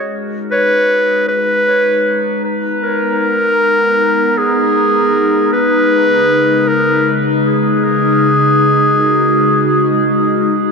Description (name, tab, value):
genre	ambient dub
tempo	78 BPM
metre	4/4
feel	straight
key	G# minor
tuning	A4 = 440 Hz
part	bright clarinet	melody	0.0-10.7 s	G#4 to B4	-13 LUFS	equal	dub echo
part	warbly tape-like pad	sustained chords	0.0-10.7 s	C#3 to A#5	-15 LUFS	left 2 dB	chorus, built-in reverb
room	moderate spring reverb, RT60 2.1 s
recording	echo-heavy mix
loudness	-11 LUFS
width	side -4 dB against mid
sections	0.0-10.7 A section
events	none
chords	0.0 G#madd9; 5.9 C#7sus4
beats	0.52 1.29 2.06 | 2.83 3.60 4.37 5.14 | 5.91 6.67 7.44 8.21 | 8.98 9.75 10.52